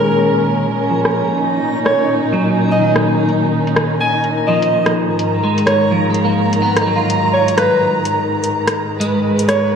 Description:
future garage; 126 BPM; 4/4; swing 62% on 16ths; G# dorian; A4 = 440 Hz
breathy alto saxophone; melody; 0.0-9.7 s; A#4 to G#5; -19 LUFS; equal; ping-pong delay
clean electric guitar; accompaniment; 0.0-9.8 s; D#3 to E#4; -19 LUFS; equal; ensemble chorus, low-pass filter, ping-pong delay
muted studio string section; sustained chords; 0.0-9.8 s; G#2 to A#5; -16 LUFS; equal; vintage 12-bit sampler grit
backwards swelling texture; texture; 0.0-9.8 s; A#5; -29 LUFS; left 1 dB; built-in reverb
deep house drum kit; drums; 0.4-9.6 s; hi-hat, rim click; -21 LUFS; equal; overdrive, low-pass filter on hats, studio reverb, low-pass filter on perc, low-pass filter on snare
wet plate reverb, RT60 1.4 s, digital ambience; dreamy mix soaked in reverb; -13 LUFS; side -7 dB against mid
0.0-9.8 A section
filter sweep on drum 0.0-9.8
0.0 A#m7; 1.4 D#m9/A#; 5.2 G#m9

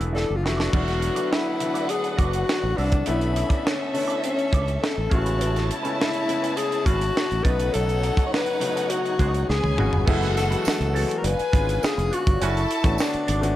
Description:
lush 1970s-style soul; 103 BPM; 4/4; straight; A4 = 441 Hz
clear baby grand piano; accompaniment; 0.0-13.6 s; C#3 to C#5; -30 LUFS; left 2 dB
electric guitar through a small old amp; riff; 0.0-13.5 s; C#4 to E5; -35 LUFS; right 4 dB; wah
fingered electric bass; bass; 0.0-13.5 s; E1 to C#2; -25 LUFS; equal
tight funk drum kit; drums; 0.0-13.6 s; crash cymbal, hi-hat, kick drum, snare drum, toms; -25 LUFS; right 1 dB
breathy tenor saxophone; melody; 0.2-13.6 s; C#4 to C#5; -26 LUFS; left 3 dB
rich studio violin section; second line; 0.7-13.3 s; C#4 to A5; -31 LUFS; equal
dark horn section; stabs; 10.1-12.6 s; C#3 to F#4; -31 LUFS; right 6 dB
tambourine; percussion; 10.6-13.1 s; -38 LUFS; right 14 dB
light reverb; dark, warm production; -20 LUFS; side -14 dB against mid
0.7-10.1 A section; 10.1-13.6 B section
drum fill 0.2-0.7, 9.5-10.1
0.0 E7sus4; 0.7 E9sus4; 3.1 Bm11; 5.1 Amaj9; 7.4 B9; 9.5 C#7sus4; 10.1 F#m11; 11.2 C#7b9/F#; 12.4 Bm9/F#

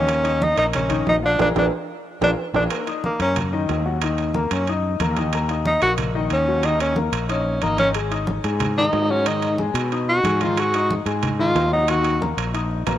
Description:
Afro-Cuban jazz; 183 BPM; 4/4; straight; Eb minor; A4 = 440 Hz
warm tenor saxophone; melody; 0.0-12.2 s; Bb3 to Gb4; -21 LUFS; equal; cassette tape
warm grand piano; accompaniment; 0.0-13.0 s; Eb3 to Eb6; -26 LUFS; left 7 dB; cassette tape
fretless electric bass; bass; 0.0-13.0 s; Ab1 to Cb3; -24 LUFS; equal
congas; percussion; 0.1-13.0 s; -29 LUFS; equal
timbales; percussion; 0.1-13.0 s; -28 LUFS; right 10 dB
light reverb, studio reverb; home recording on cassette, lossy compression artefacts; -18 LUFS; side -12 dB against mid
0.0-2.7 A section; 2.7-13.0 B section
band accent 1.4-2.7; drum fill 1.9-2.7; tenor saxophone solo 2.7-13.0
0.1 Eb5; 1.4 Bb7; 2.7 Ebm7; 8.0 Ab7(no3); 11.9 Ebm

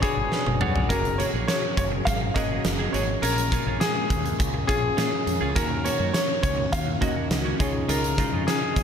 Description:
1980s-style pop; 103 BPM; 4/4; straight; F# major; A4 = 440 Hz
clear grand piano; melody; 0.0-8.8 s; G#4 to E#5; -28 LUFS; left 1 dB; slapback echo, ping-pong delay
tine electric piano; accompaniment; 0.0-8.8 s; A#2 to B5; -32 LUFS; left 4 dB
phased string machine; sustained chords; 0.0-8.8 s; C#3 to C#5; -34 LUFS; equal; ensemble chorus, phaser
twelve-string electric guitar; riff; 0.0-8.7 s; G#3 to C#5; -34 LUFS; right 6 dB; wide subtle chorus, ping-pong delay
huge arena drum kit; drums; 0.0-8.8 s; hi-hat, kick drum, snare drum, toms; -26 LUFS; equal
mellow fretless electric bass; bass; 0.2-8.8 s; F#1 to A#2; -29 LUFS; equal
moderate lush hall reverb, RT60 2.4 s; big arena sound; -22 LUFS; side -7 dB against mid
0.9-8.8 A section
tine electric piano fill 0.0-0.9; drum fill 0.3-0.9
0.0 Bmadd9; 0.9 F#add9; 3.2 A#m7; 5.6 D#m7; 7.6 C#add9

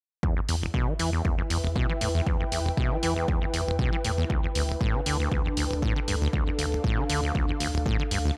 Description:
acid house; 118 BPM; 4/4; swing 54% on 16ths; E phrygian; A4 = 441 Hz
acid bass, saw; riff; 0.2-8.3 s; D1 to E3; -32 LUFS; equal; sidechain pumping, tape echo
electronic kick drum; drums; 0.2-8.0 s; -30 LUFS; equal
ethereal airy pad; texture; 0.7-8.4 s; D4 to G5; -35 LUFS; equal; ensemble chorus, built-in reverb, sidechain pumping
saturated sub bass; bass; 0.5-8.3 s; D2 to E2; -33 LUFS; equal; sidechain pumping
electronic hi-hat; drums; 0.5-8.2 s; -36 LUFS; equal
little or no reverb; dry, gritty hardware recording; -27 LUFS; mono
0.2-8.4 A section
0.2 Em; 4.3 Dm

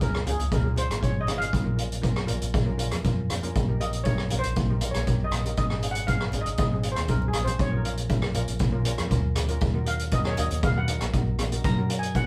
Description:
calypso; 119 BPM; 4/4; straight; A4 = 440 Hz
steel pan; melody; 0.0-12.3 s; Ab4 to Bb5; -34 LUFS; equal
steel pan; accompaniment; 0.0-12.3 s; C4 to Bb4; -39 LUFS; equal
vintage muted fingered electric bass; bass; 0.0-12.3 s; Ab1 to Gb2; -32 LUFS; equal
street-band drum kit; drums; 0.0-12.3 s; hi-hat, kick drum, rim click; -28 LUFS; equal
congas; percussion; 0.3-11.6 s; -40 LUFS; equal
moderate small room reverb, RT60 0.5 s; band playing live in one room; -26 LUFS; mono
0.0-12.3 A section
steel pan solo 0.0-12.3; drum fill 7.1-7.6
0.0 Db; 1.5 Bbm; 3.6 Eb/Bb; 5.6 Absus4; 6.6 Ab; 7.6 Bbm; 9.6 Ebm; 11.6 Gb

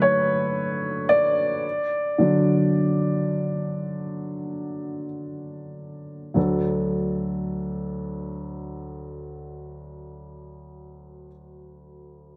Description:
pop; free time; D major; A4 = 440 Hz
dark upright piano; accompaniment; 0.0-12.4 s; D2 to D5; -25 LUFS; equal
moderate lush hall reverb, RT60 2.3 s; -25 LUFS; mono
0.0-6.4 A section; 6.4-11.5 B section
slowing down 0.0-6.4; upright piano solo 0.0-6.4
0.0 D

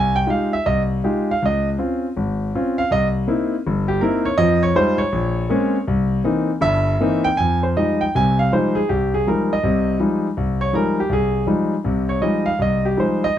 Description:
solo jazz; 161 BPM; 4/4; swing 66% on 8ths, rubato; F minor; A4 = 438 Hz
warm concert grand piano; solo; 0.0-13.4 s; G1 to Ab5; -17 LUFS; equal
light reverb; dry, close 1970s-style studio recording; -17 LUFS; side -10 dB against mid
0.0-7.4 A section; 7.4-13.4 A section
grand piano solo 0.0-13.4
0.0 Fm9; 1.4 Dbmaj7; 2.9 C7#9; 4.4 Fm9; 5.1 Bbm9; 5.9 C7#9; 7.4 Fm9

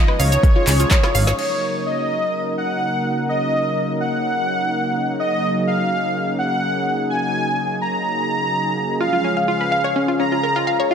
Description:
progressive house; 126 BPM; 4/4; straight; F# major; A4 = 440 Hz
soft supersaw; melody; 0.0-10.9 s; C#5 to A#5; -21 LUFS; equal; tape echo
supersaw pad; sustained chords; 0.0-10.9 s; C#3 to A#4; -23 LUFS; equal; sidechain pumping, low-pass filter
analog pluck; arpeggios; 0.0-1.3, 9.0-10.9 s; C#4 to E#5; -22 LUFS; left 1 dB; chorus, phaser, vintage 12-bit sampler grit, sidechain pumping, tape echo
backwards swelling texture; texture; 0.1-1.4 s; D#6; -37 LUFS; right 1 dB
deep house drum kit; drums; 0.1-1.5 s; crash cymbal, handclaps, hi-hat, shaker, snare drum, woodblock; -23 LUFS; equal; small room ambience
plucky analog bass; bass; 0.2-1.3 s; G#1 to C#2; -17 LUFS; equal; sidechain pumping
electronic kick drum; drums; 0.4-1.0 s; -15 LUFS; equal; small room ambience
moderate digital room reverb, RT60 1.2 s; -17 LUFS; side -7 dB against mid
0.0-1.4 A section; 1.4-10.9 B section
drum fill 0.9-1.4; filter sweep on supersaw synth 1.4-10.9
0.0 C#; 1.4 F#6; 9.0 C#

